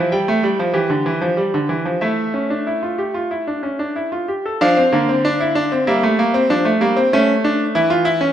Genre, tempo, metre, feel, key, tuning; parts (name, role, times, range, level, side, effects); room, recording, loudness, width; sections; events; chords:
classical, baroque-style 3-part fugue for grand piano; 95 BPM; 4/4; straight; D minor; A4 = 440 Hz
bright concert grand piano; solo; 0.0-8.3 s; D3 to G5; -15 LUFS; equal
wet recital hall reverb, RT60 1.5 s; -15 LUFS; side -10 dB against mid
0.0-4.6 A section; 4.6-8.3 B section
0.0 Fmaj7sus2; 2.0 A; 4.6 Dm; 5.9 Gm; 7.1 A